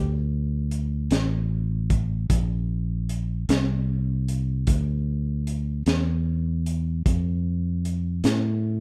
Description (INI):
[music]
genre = slow blues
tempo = 50 BPM (dotted quarters)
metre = 12/8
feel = straight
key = D minor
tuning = A4 = 439 Hz
[part]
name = fingered electric bass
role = bass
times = 0.0-8.8 s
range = A1 to A2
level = -26 LUFS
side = equal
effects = none
[part]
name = crunchy breakbeat drum kit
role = drums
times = 0.7-8.4 s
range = hi-hat, kick drum, snare drum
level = -27 LUFS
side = equal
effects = none
[sound]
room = little or no reverb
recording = rough home demo mix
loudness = -25 LUFS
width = mono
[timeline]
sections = 0.0-8.8 A section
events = none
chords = none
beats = 1.12 2.30 3.49 | 4.68 5.87 7.05 8.24